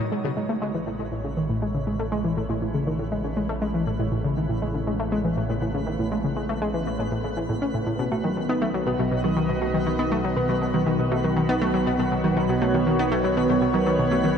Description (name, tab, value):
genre	ambient, sequencer-driven space music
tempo	120 BPM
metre	4/4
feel	straight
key	A lydian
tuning	A4 = 445 Hz
part	phased analog pad	sustained chords	0.0-14.4 s	C#3 to D#5	-28 LUFS	right 1 dB	phaser, chorus
part	analog pluck	riff	0.0-14.3 s	A2 to C#4	-25 LUFS	left 1 dB	chorus, ping-pong delay
part	analog drone	bass	0.8-14.4 s	A1 to B1	-32 LUFS	equal	chorus, tube saturation
part	twinkling granular texture	texture	0.0-14.4 s	B3 to B4	-35 LUFS	equal	built-in reverb
part	thumb-piano-like synth pluck	arpeggios	8.1-14.4 s	F#3 to B4	-27 LUFS	equal	chorus, auto-pan, ping-pong delay
room	wet cathedral reverb, RT60 6.8 s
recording	in a vast, echoing space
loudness	-22 LUFS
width	side -7 dB against mid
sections	0.0-14.4 A section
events	fade-in on analog synth pad 0.0-14.4; fade-in on synth texture 0.0-14.4; filter sweep on synth arpeggio sound 0.0-14.4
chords	0.0 A; 8.0 B